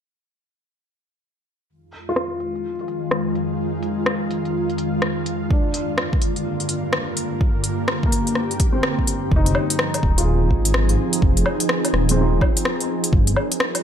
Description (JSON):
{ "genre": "future garage", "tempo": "126 BPM", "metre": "4/4", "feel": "swing 62% on 16ths", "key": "F minor", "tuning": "A4 = 439 Hz", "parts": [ { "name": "ethereal airy pad", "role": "sustained chords", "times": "2.1-13.8 s", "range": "F2 to Bb4", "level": "-24 LUFS", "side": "equal", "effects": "ensemble chorus, built-in reverb, sidechain pumping" }, { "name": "deep house drum kit", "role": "drums", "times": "1.9-13.8 s", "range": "hi-hat, rim click, woodblock", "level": "-23 LUFS", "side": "left 1 dB", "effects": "low-pass filter on hats, low-pass filter on snare, low-pass filter on perc" }, { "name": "warm upright piano", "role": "accompaniment", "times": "2.1-13.1 s", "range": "Bb3 to Ab4", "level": "-28 LUFS", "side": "left 1 dB", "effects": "vintage 12-bit sampler grit, sidechain pumping, ping-pong delay" }, { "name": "electronic kick drum", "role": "drums", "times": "5.5-13.2 s", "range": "none", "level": "-19 LUFS", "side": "equal", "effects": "none" }, { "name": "dark detuned saw bass", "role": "bass", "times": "9.3-13.3 s", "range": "Eb1 to Ab1", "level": "-19 LUFS", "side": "equal", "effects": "sidechain pumping" } ], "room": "light reverb", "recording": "none", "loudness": "-18 LUFS", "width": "side -8 dB against mid", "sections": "1.7-9.3 A section; 9.3-13.8 B section", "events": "filter sweep on drum 1.7-9.3", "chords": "1.7 Fm7; 5.5 Gm7; 9.3 Fm7; 13.1 Gm7", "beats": "| 1.70 2.17 2.65 3.12 | 3.60 4.08 4.55 5.03 | 5.50 5.98 6.46 6.93 | 7.41 7.89 8.36 8.84 | 9.31 9.79 10.27 10.74 | 11.22 11.70 12.17 12.65 | 13.12 13.60" }